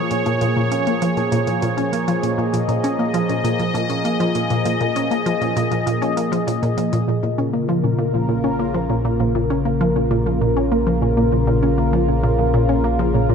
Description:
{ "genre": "ambient, sequencer-driven space music", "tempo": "99 BPM", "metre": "4/4", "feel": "straight", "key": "Bb minor", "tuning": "A4 = 439 Hz", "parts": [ { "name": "sweeping resonant pad", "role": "sustained chords", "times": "0.0-13.3 s", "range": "Db3 to Eb5", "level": "-20 LUFS", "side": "left 1 dB", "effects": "chorus" }, { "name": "resonant blip pluck", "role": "riff", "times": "0.0-13.3 s", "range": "Bb2 to Db4", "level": "-20 LUFS", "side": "equal", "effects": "chorus, tape echo" }, { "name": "electronic hi-hat and woodblock", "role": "percussion", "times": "0.1-7.0 s", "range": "none", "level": "-37 LUFS", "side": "right 2 dB", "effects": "tape echo" }, { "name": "round analog bass", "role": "bass", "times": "7.1-13.3 s", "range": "Bb1", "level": "-24 LUFS", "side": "equal", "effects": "none" } ], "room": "wet plate reverb, RT60 2.6 s", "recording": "dark, warm production, lossy compression artefacts", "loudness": "-17 LUFS", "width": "side -6 dB against mid", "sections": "0.0-7.1 A section; 7.1-13.3 B section", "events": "none", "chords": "0.0 Bbm7", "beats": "0.41 1.02 1.63 | 2.23 2.84 3.44 4.05 | 4.66 5.26 5.87 6.47 | 7.08 7.69 8.29 8.90 | 9.51 10.11 10.72 11.32 | 11.93 12.54 13.14" }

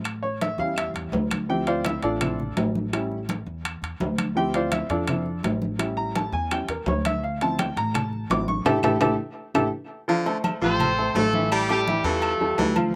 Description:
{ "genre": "latin, salsa", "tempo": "168 BPM", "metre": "4/4", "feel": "straight", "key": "D minor", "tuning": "A4 = 436 Hz", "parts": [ { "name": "upright bass", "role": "bass", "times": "0.0-13.0 s", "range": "A1 to F2", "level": "-32 LUFS", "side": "equal", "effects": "none" }, { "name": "claves", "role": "percussion", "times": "0.0-12.9 s", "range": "none", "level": "-39 LUFS", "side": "equal", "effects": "none" }, { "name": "congas", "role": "percussion", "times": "0.1-12.9 s", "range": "none", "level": "-33 LUFS", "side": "equal", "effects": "none" }, { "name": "timbales and agogo bells", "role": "percussion", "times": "0.1-12.9 s", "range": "none", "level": "-32 LUFS", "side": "equal", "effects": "none" }, { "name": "clear upright piano", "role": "accompaniment", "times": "0.2-12.9 s", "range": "E3 to D6", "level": "-28 LUFS", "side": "equal", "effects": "none" }, { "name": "edgy baritone saxophone", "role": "second line", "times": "10.1-12.8 s", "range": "C3 to A3", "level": "-31 LUFS", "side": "equal", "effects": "none" }, { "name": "brilliant horn section", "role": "melody", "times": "10.6-12.7 s", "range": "G3 to C5", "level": "-27 LUFS", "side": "equal", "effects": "slapback echo" } ], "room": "little or no reverb", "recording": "recorded outdoors, with no room sound", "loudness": "-25 LUFS", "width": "mono", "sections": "0.0-10.1 A section; 10.1-13.0 B section", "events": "upright piano solo 0.0-10.1; band accent 8.7-10.1; drum fill 9.4-10.1", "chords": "0.0 A7; 1.5 Dm7; 2.9 A7; 4.4 Dm7; 5.8 A7; 7.2 Dm7; 8.7 A5; 10.1 Dm7; 11.5 A5", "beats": "| 0.05 0.41 0.77 1.13 | 1.49 1.85 2.21 2.57 | 2.93 3.29 3.65 4.00 | 4.36 4.72 5.08 5.44 | 5.80 6.16 6.51 6.87 | 7.23 7.58 7.94 8.30 | 8.66 9.01 9.37 9.73 | 10.08 10.44 10.80 11.15 | 11.51 11.87 12.23 12.58 | 12.94" }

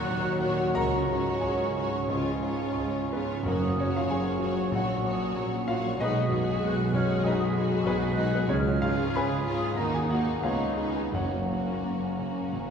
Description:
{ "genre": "classical, romantic movement for piano and orchestra", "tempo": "84-99 BPM", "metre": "4/4", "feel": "rubato", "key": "F# major", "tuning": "A4 = 439 Hz", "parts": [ { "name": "clear concert grand piano", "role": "melody", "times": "0.0-12.7 s", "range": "A#1 to B5", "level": "-30 LUFS", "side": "left 1 dB", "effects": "none" }, { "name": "warm symphonic violin section", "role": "melody", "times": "0.0-12.7 s", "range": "F#4 to C#5", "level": "-38 LUFS", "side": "left 2 dB", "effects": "none" }, { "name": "bright large flute ensemble", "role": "second line", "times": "0.0-12.7 s", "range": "A#5 to F#6", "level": "-38 LUFS", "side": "right 1 dB", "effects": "none" }, { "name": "warm clarinet", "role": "second line", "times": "0.0-12.7 s", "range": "C#4 to F#4", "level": "-38 LUFS", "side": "right 1 dB", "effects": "none" }, { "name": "warm symphonic violin section", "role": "second line", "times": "0.0-12.7 s", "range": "C#4 to F#4", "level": "-37 LUFS", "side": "left 3 dB", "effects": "none" }, { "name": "mellow bassoon", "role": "accompaniment", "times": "0.0-12.7 s", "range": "E#3 to B3", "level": "-38 LUFS", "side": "right 1 dB", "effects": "none" }, { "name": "warm symphonic viola section", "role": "accompaniment", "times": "0.0-12.7 s", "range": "F#3 to C#4", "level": "-38 LUFS", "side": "right 1 dB", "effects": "none" }, { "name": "mellow French horn section", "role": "sustained chords", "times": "0.0-12.7 s", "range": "G#3 to F#4", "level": "-36 LUFS", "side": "left 2 dB", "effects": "none" }, { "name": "warm symphonic cello section", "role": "bass", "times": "0.0-12.7 s", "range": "F#2 to D#3", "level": "-36 LUFS", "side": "right 3 dB", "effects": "none" }, { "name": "warm symphonic double bass section", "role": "bass", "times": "0.0-12.7 s", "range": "F#1 to D#2", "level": "-36 LUFS", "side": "right 3 dB", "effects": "none" }, { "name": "clear tuba", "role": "bass", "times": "0.1-12.7 s", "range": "F#1 to D#2", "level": "-36 LUFS", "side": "right 2 dB", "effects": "none" }, { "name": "timpani", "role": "percussion", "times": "2.1-4.4, 8.5-12.1 s", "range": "F#2 to C#3", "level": "-37 LUFS", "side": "equal", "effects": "none" } ], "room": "wet concert hall reverb, RT60 2.4 s", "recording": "heard from further back in the room", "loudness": "-25 LUFS", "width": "side -7 dB against mid", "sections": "0.0-12.7 A section", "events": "none", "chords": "0.0 D#m7; 0.8 C#sus4; 2.1 C#; 3.4 F#; 4.7 F#/A#; 6.0 G#m7/B; 8.5 C#; 9.8 D#m; 10.4 C#9; 11.1 F#", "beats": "0.10 | 0.75 1.43 2.10 2.77 | 3.44 4.09 4.73 5.35 | 5.99 6.62 7.24 7.85 | 8.48 9.15 9.77 10.42 | 11.12 11.83 12.52" }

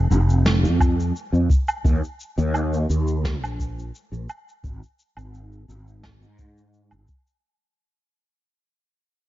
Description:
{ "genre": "sunset chillout", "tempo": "86 BPM", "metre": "4/4", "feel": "straight", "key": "unclear", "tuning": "A4 = 438 Hz", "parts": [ { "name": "fretless electric bass", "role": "bass", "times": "0.0-7.1 s", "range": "F1 to Ab2", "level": "-20 LUFS", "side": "equal", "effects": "ensemble chorus" }, { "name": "shaker, snare drum and woodblock", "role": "drums", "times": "0.1-7.4 s", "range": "none", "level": "-29 LUFS", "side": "right 2 dB", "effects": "none" }, { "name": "electronic kick drum", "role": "drums", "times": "0.8-7.2 s", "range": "none", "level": "-20 LUFS", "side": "equal", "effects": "none" } ], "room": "little or no reverb", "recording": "dark, warm production, nothing above 7.5 kHz", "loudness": "-19 LUFS", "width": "side -15 dB against mid", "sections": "0.0-7.4 A section", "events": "fade-out 0.0-7.4", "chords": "none", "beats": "0.45 1.15 | 1.85 2.54 3.24 3.94 | 4.64 5.33 6.03 6.73" }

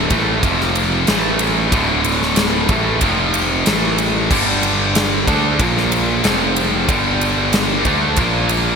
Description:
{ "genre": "hard rock", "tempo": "93 BPM", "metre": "4/4", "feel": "straight", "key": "unclear", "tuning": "A4 = 440 Hz", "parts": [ { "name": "heavy high-gain guitar", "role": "riff", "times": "0.0-8.8 s", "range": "D2 to D4", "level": "-19 LUFS", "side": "left 7 dB", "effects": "distortion" }, { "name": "high-gain distorted guitar", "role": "riff", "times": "0.0-8.8 s", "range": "D2 to D4", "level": "-20 LUFS", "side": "right 12 dB", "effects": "distortion" }, { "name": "fuzz picked electric bass", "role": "bass", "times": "0.0-8.8 s", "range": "D1 to D2", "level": "-22 LUFS", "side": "equal", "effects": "overdrive" }, { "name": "huge arena drum kit", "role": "drums", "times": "0.1-8.7 s", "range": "crash cymbal, kick drum, ride cymbal, snare drum", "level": "-19 LUFS", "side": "equal", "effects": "none" } ], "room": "moderate lush hall reverb, RT60 2.9 s", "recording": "bright 1980s-style digital production", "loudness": "-14 LUFS", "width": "side -6 dB against mid", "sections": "0.0-8.8 A section", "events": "none", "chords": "0.4 F5; 1.1 A5; 1.7 D5; 3.0 F5; 3.7 A5; 4.3 G5; 5.6 Bb5; 6.3 F5; 6.9 G5; 8.2 Bb5", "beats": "0.43 1.08 | 1.73 2.37 3.02 3.67 | 4.31 4.96 5.61 6.25 | 6.90 7.54 8.19" }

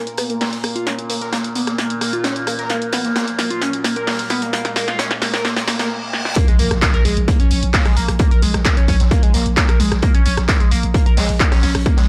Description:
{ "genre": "driving peak-time techno", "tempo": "131 BPM", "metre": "4/4", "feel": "straight", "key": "Bb minor", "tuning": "A4 = 440 Hz", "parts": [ { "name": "overtone-sweeping drone", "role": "drone", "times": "0.0-5.9 s", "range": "Bb2 to Bb3", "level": "-31 LUFS", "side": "equal", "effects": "chorus, built-in reverb, sidechain pumping" }, { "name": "riser, reverse cymbal and impact", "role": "sound effects", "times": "2.5-8.2 s", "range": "none", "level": "-32 LUFS", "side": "equal", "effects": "none" }, { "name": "punchy analog drum machine", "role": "drums", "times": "0.1-12.1 s", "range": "handclaps, hi-hat, rim click, snare drum", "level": "-24 LUFS", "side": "equal", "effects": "high-pass filter on snare, studio reverb, high-pass filter on hats" }, { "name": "overdriven synth lead", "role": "riff", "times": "0.2-12.0 s", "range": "Ab3 to Bb4", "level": "-25 LUFS", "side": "equal", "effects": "phaser, tube saturation, sidechain pumping, tape echo" }, { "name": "street-band drum kit", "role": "drums", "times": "0.2-12.1 s", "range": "hi-hat, snare drum", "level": "-31 LUFS", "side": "equal", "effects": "sidechain pumping on hats, high-pass filter on hats, studio reverb, high-pass filter on snare, high-pass filter on room" }, { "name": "electronic kick drum", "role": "drums", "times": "6.4-12.0 s", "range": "none", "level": "-17 LUFS", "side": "equal", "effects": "overdrive, studio reverb" }, { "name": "growling 808-style bass", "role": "bass", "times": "6.5-12.1 s", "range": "Bb1", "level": "-22 LUFS", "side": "equal", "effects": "overdrive, sidechain pumping, low-pass filter" } ], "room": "light reverb, digital ambience", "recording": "dry, gritty hardware recording", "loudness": "-17 LUFS", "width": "mono", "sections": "0.0-6.4 A section; 6.4-12.1 B section", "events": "build-up 0.0-6.4; drum fill 0.0-5.9, 6.1; filter sweep on analog synth lead 0.0-6.4; riser 2.5-5.9; reverse cymbal 5.4-6.4; drop 6.4-12.1; impact 6.4-8.2", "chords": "0.0 Bb5; 6.4 Bbm", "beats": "0.41 | 0.87 1.32 1.78 2.24 | 2.70 3.16 3.62 4.07 | 4.53 4.99 5.45 5.91 | 6.36 6.82 7.28 7.74 | 8.20 8.65 9.11 9.57 | 10.03 10.48 10.94 11.40 | 11.86" }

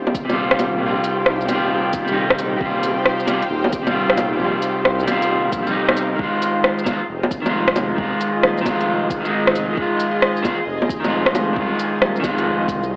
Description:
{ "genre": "future garage", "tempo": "134 BPM", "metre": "4/4", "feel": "swing 64% on 16ths", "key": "F minor", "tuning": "A4 = 438 Hz", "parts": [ { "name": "granular cloud pad", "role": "sustained chords", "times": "0.0-13.0 s", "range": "Eb4 to G5", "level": "-26 LUFS", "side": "equal", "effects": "built-in reverb, sidechain pumping" }, { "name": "dark detuned saw bass", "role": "bass", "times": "0.0-13.0 s", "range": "Eb1 to C2", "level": "-26 LUFS", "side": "equal", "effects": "sidechain pumping" }, { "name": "flickering grainy texture", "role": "texture", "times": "0.0-6.2 s", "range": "G4", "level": "-30 LUFS", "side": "equal", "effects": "none" }, { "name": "electronic kick drum", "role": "drums", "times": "0.1-12.8 s", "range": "none", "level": "-30 LUFS", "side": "equal", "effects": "overdrive, studio reverb, cassette tape" }, { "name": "organic electronic drum kit", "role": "drums", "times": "0.1-12.9 s", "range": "bongos, hi-hat, rim click, shaker", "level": "-18 LUFS", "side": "equal", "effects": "overdrive, studio reverb, cassette tape" }, { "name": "electric guitar at the edge of break-up", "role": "accompaniment", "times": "0.2-12.8 s", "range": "C3 to F4", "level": "-20 LUFS", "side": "equal", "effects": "sidechain pumping, analog delay" } ], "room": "moderate spring reverb, RT60 1.3 s", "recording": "home recording on cassette, AM radio sound", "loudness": "-16 LUFS", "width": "side -28 dB against mid", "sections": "0.0-6.2 A section; 6.2-13.0 A section", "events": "none", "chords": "0.0 Eb69; 6.2 Fm7", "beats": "0.37 | 0.82 1.27 1.72 2.16 | 2.61 3.06 3.51 3.95 | 4.40 4.85 5.30 5.75 | 6.19 6.64 7.09 7.54 | 7.98 8.43 8.88 9.33 | 9.77 10.22 10.67 11.12 | 11.56 12.01 12.46 12.91" }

